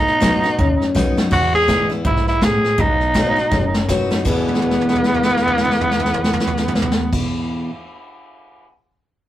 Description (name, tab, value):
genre	rockabilly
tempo	163 BPM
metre	4/4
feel	swing 60% on 8ths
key	E major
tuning	A4 = 440 Hz
part	raspy tenor saxophone	melody	0.0-7.1 s	B3 to G#4	-18 LUFS	equal	none
part	picked steel-string acoustic guitar	accompaniment	0.0-7.7 s	E2 to F#4	-21 LUFS	left 1 dB	none
part	upright bass	bass	0.0-7.1 s	F#1 to E2	-23 LUFS	equal	none
part	vintage brush drum kit	drums	0.1-8.7 s	crash cymbal, hi-hat, kick drum, snare drum, toms	-21 LUFS	right 1 dB	none
room	light reverb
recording	rough rehearsal-room recording, warm saturation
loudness	-15 LUFS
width	side -13 dB against mid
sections	0.0-1.3 A section; 1.3-4.3 B section; 4.3-7.2 C section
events	drum fill 0.9-1.3, 3.5-4.3, 4.4-7.1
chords	0.0 B; 1.3 E; 2.8 B; 4.3 E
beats	0.21 0.58 0.95 | 1.32 1.68 2.05 2.42 | 2.79 3.15 3.52 3.89 | 4.25 4.62 4.99 5.36 | 5.73 6.09 6.46 6.83